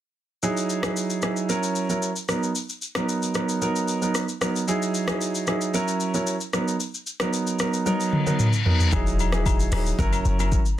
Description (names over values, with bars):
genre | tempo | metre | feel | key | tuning
afrobeats | 113 BPM | 4/4 | straight | B major | A4 = 440 Hz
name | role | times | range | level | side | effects
warm baby grand piano | accompaniment | 0.4-10.6 s | F#3 to A#4 | -24 LUFS | right 3 dB | none
afro-pop drum kit | drums | 0.4-10.8 s | hi-hat, kick drum, rim click, shaker, toms | -26 LUFS | left 1 dB | overdrive
reverse cymbal | sound effects | 8.1-8.9 s | none | -29 LUFS | left 6 dB | none
clean 808-style bass | bass | 8.9-10.6 s | D#1 to F#1 | -24 LUFS | left 1 dB | none
agogo bells | percussion | 8.9-10.5 s | none | -33 LUFS | left 12 dB | none
room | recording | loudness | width
light reverb | dense, heavily limited modern master | -22 LUFS | side -12 dB against mid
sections
0.4-8.9 A section; 8.9-10.8 B section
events
drum fill 7.9-8.9; reverse cymbal 8.1-8.9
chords
0.4 Emaj9; 1.5 F#7; 2.3 Bmaj7; 4.7 Emaj9; 5.7 F#7; 6.5 Bmaj7; 8.9 Emaj9; 10.0 F#7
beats
| 0.43 0.96 1.49 2.02 | 2.55 3.08 3.62 4.15 | 4.68 5.21 5.74 6.27 | 6.80 7.33 7.86 8.39 | 8.93 9.46 9.99 10.52